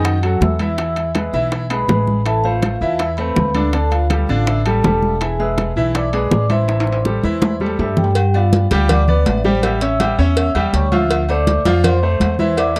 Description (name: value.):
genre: latin, salsa.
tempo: 163 BPM.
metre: 4/4.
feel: straight.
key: A minor.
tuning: A4 = 440 Hz.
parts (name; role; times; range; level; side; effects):
bright upright piano; accompaniment; 0.0-12.8 s; D3 to G5; -23 LUFS; equal; none.
upright bass; bass; 0.0-12.8 s; E1 to G2; -21 LUFS; equal; none.
congas; percussion; 0.0-12.8 s; none; -24 LUFS; equal; none.
timbales and agogo bells; percussion; 0.0-12.8 s; none; -29 LUFS; equal; none.
vibraphone with medium mallets; melody; 0.1-12.8 s; F4 to E6; -24 LUFS; equal; tape echo.
bongos and cowbell; percussion; 0.1-12.8 s; none; -24 LUFS; equal; none.
room: light reverb.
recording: dry, close 1970s-style studio recording.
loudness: -17 LUFS.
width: mono.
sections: 0.0-8.2 A section; 8.2-12.8 B section.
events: drum fill 6.7-8.2.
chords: 0.0 B7 (rootless); 0.8 E; 2.3 Am; 3.7 Dsus4; 5.2 E7; 6.7 Am7; 8.2 G7; 9.6 A7; 11.1 Dm9.